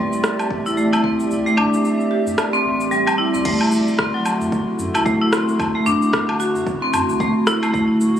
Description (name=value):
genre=organic downtempo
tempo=112 BPM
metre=4/4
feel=swing 59% on 16ths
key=unclear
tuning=A4 = 440 Hz
part: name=warbly tape-like pad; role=sustained chords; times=0.0-8.2 s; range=D3 to E5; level=-25 LUFS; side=right 2 dB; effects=chorus, built-in reverb, vintage 12-bit sampler grit, sidechain pumping
part: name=marimba with hard mallets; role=arpeggios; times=0.0-7.9 s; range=F#3 to G4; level=-18 LUFS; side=equal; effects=ping-pong delay
part: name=deep house drum kit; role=drums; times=0.1-8.2 s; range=crash cymbal, rim click, shaker, woodblock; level=-23 LUFS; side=equal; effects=overdrive
part: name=udu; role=percussion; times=0.1-6.6 s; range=none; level=-42 LUFS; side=equal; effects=none
part: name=warm sub bass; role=bass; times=0.5-8.1 s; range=D1 to F#2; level=-33 LUFS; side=equal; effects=none
part: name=electronic kick drum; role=drums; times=0.5-7.9 s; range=none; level=-28 LUFS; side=equal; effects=overdrive
room=moderate lush hall reverb, RT60 2.9 s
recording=recorded on a phone in the room, club reverb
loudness=-16 LUFS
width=side -10 dB against mid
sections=0.0-3.5 A section; 3.5-8.2 B section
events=kick drops out 1.3-3.5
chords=0.0 C69; 3.5 D7